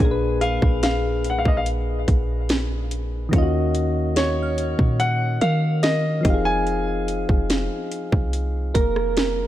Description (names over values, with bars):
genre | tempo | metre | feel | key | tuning
contemporary R&B | 72 BPM | 4/4 | straight | Bb minor | A4 = 440 Hz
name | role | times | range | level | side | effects
clear concert grand piano | melody | 0.0-7.2 s | Db5 to Ab5 | -26 LUFS | left 1 dB | digital delay
soft electric-piano-like synth keys | accompaniment | 0.0-9.5 s | Bb2 to F5 | -25 LUFS | left 1 dB | chorus
clean 808-style bass | bass | 0.0-9.5 s | F1 to Eb3 | -24 LUFS | equal | none
trap drum kit | drums | 0.0-9.4 s | hi-hat, kick drum, rim click, snare drum | -22 LUFS | equal | none
glassy synth bell | texture | 0.0-6.6 s | Ab4 to F6 | -33 LUFS | right 2 dB | chorus, digital delay
room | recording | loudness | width
digital ambience | none | -19 LUFS | side -13 dB against mid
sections
0.0-9.5 A section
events
none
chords
0.0 Bb7b9; 3.3 Ebm9; 6.2 Fm7